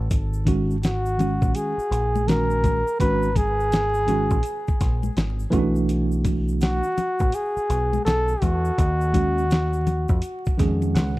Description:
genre	hip hop, jazz-hop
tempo	83 BPM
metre	4/4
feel	swing 62% on 16ths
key	G# minor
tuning	A4 = 440 Hz
part	deep dub picked electric bass	bass	0.0-11.2 s	G#1 to E#2	-24 LUFS	equal	none
part	dusty soul sampler-style drum kit	drums	0.1-11.2 s	hi-hat, kick drum, snare drum	-23 LUFS	equal	none
part	egg shaker and congas	percussion	0.1-11.2 s	none	-31 LUFS	left 5 dB	none
part	mellow tine electric piano	accompaniment	0.5-11.2 s	D#3 to F#5	-24 LUFS	right 2 dB	medium stereo tremolo
part	breathy flugelhorn	melody	0.8-10.6 s	F#4 to B4	-25 LUFS	equal	tape echo
room	little or no reverb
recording	dry, close 1970s-style studio recording, vinyl crackle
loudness	-20 LUFS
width	side -18 dB against mid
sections	0.1-11.2 A section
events	tine electric piano fill 10.6-11.2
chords	0.1 G#sus2; 5.5 Bm7; 8.8 D#m9

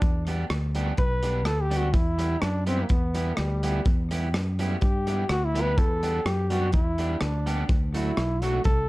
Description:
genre	ska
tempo	125 BPM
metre	4/4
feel	swing 53% on 8ths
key	E minor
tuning	A4 = 440 Hz
part	bright trombone	melody	0.0-8.9 s	G3 to B4	-29 LUFS	equal	plate reverb
part	fingered electric bass	bass	0.0-8.9 s	B1 to G2	-27 LUFS	equal	none
part	crunchy breakbeat drum kit	drums	0.0-8.8 s	hi-hat, kick drum, rim click	-26 LUFS	equal	none
part	electric guitar at the edge of break-up	accompaniment	0.3-8.6 s	F#3 to G4	-34 LUFS	right 2 dB	spring reverb, plate reverb
room	light reverb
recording	dark, warm production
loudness	-23 LUFS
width	side -20 dB against mid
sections	0.0-8.9 A section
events	trombone solo 0.0-8.9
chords	0.0 Em; 7.7 D

